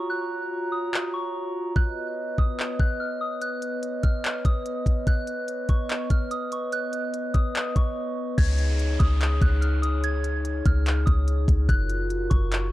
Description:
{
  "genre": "hip hop, atmospheric cloud-rap",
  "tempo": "145 BPM",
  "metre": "4/4",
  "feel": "half-time",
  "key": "B lydian",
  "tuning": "A4 = 441 Hz",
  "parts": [
    { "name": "soft synth bell", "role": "melody", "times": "0.0-12.7 s", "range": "C#6 to G#6", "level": "-33 LUFS", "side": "right 1 dB", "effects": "chorus, phaser, tape echo" },
    { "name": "glass harmonica", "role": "sustained chords", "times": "0.0-12.7 s", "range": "B3 to A#5", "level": "-30 LUFS", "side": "equal", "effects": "sidechain pumping" },
    { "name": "trap drum kit", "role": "drums", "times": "0.9-12.6 s", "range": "crash cymbal, handclaps, hi-hat, kick drum", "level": "-23 LUFS", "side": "equal", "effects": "none" },
    { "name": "clean 808-style bass", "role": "bass", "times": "8.4-12.7 s", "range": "F#1 to C#2", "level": "-23 LUFS", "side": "equal", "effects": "none" },
    { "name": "downlifter", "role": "sound effects", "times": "8.4-11.7 s", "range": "none", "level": "-40 LUFS", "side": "equal", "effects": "none" }
  ],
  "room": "little or no reverb",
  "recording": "dry, gritty hardware recording, cassette tape",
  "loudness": "-22 LUFS",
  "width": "side -16 dB against mid",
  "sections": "0.0-8.4 A section; 8.4-12.7 B section",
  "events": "break 8.0-8.4",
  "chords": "0.0 F#maj7; 1.8 Badd9; 8.4 C#sus2; 11.7 F#maj7"
}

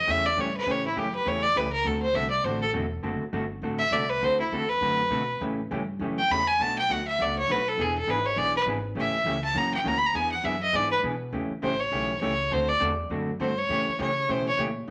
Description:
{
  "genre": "country, western swing",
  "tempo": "203 BPM",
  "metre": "4/4",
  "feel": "swing 60% on 8ths",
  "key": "A mixolydian",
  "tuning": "A4 = 440 Hz",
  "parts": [
    { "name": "clear fiddle", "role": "melody", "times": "0.0-14.6 s", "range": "E4 to B5", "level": "-27 LUFS", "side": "equal", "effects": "none" },
    { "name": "upright bass", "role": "bass", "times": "0.0-14.9 s", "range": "E1 to C#3", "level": "-37 LUFS", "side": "equal", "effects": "none" },
    { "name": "vintage hollow-body jazz guitar", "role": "accompaniment", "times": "0.1-14.9 s", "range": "B2 to A4", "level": "-34 LUFS", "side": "equal", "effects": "none" }
  ],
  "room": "moderate studio reverb, RT60 0.7 s",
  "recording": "none",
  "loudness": "-26 LUFS",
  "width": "mono",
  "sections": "0.0-11.3 A section; 11.3-14.9 A section",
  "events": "fiddle solo 0.0-11.3, 11.3-14.9",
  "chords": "0.0 A7; 1.9 D7; 5.4 A7; 6.6 Bm7; 7.8 E7; 9.0 A7; 9.6 F#7; 10.1 E7; 11.3 A7; 12.5 D7; 13.7 A7"
}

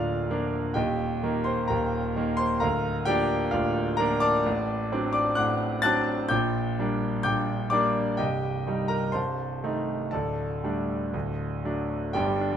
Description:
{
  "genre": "classical, virtuoso piano study",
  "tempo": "116-133 BPM",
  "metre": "4/4",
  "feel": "rubato",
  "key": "Bb major",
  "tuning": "A4 = 439 Hz",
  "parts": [
    { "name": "clear concert grand piano", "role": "solo", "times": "0.0-12.6 s", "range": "C1 to A6", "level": "-24 LUFS", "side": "equal", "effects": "none" }
  ],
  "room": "light reverb",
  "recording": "none",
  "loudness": "-24 LUFS",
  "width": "side -9 dB against mid",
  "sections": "0.0-12.2 A section",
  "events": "none",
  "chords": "0.0 Bb/D; 0.8 Eb; 2.6 Bb/D; 4.5 D7/A; 6.3 Gm/Bb; 8.2 Cm; 9.1 Adim/C; 10.1 Dsus4; 11.1 D"
}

